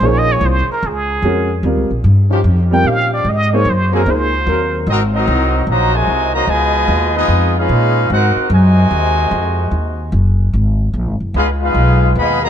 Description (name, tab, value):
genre	jazz, big band swing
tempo	148 BPM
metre	4/4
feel	swing 64% on 8ths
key	Ab major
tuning	A4 = 441 Hz
part	trumpet with plunger mute	melody	0.0-4.8 s	Ab4 to G5	-18 LUFS	right 2 dB	none
part	warm upright piano	accompaniment	0.0-4.3 s	G3 to C5	-20 LUFS	equal	none
part	warm trombone section	sustained chords	0.0-4.9 s	F3 to Bb4	-22 LUFS	left 1 dB	none
part	upright bass	bass	0.0-12.5 s	Gb1 to Bb2	-15 LUFS	equal	none
part	warm trumpet section	melody	4.9-12.5 s	Cb4 to Cb6	-17 LUFS	equal	none
part	bright trombone section	second line	4.9-12.5 s	Cb3 to Gb4	-19 LUFS	left 1 dB	none
room	light reverb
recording	dark, warm production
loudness	-12 LUFS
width	side -9 dB against mid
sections	0.0-4.9 A section; 4.9-12.5 B section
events	muted trumpet solo 0.0-4.9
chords	0.0 Bbm7; 1.6 Eb9; 3.3 Ab9; 6.5 Db9; 8.1 Ab9; 9.7 Ebm; 10.5 Absus2; 11.3 Db9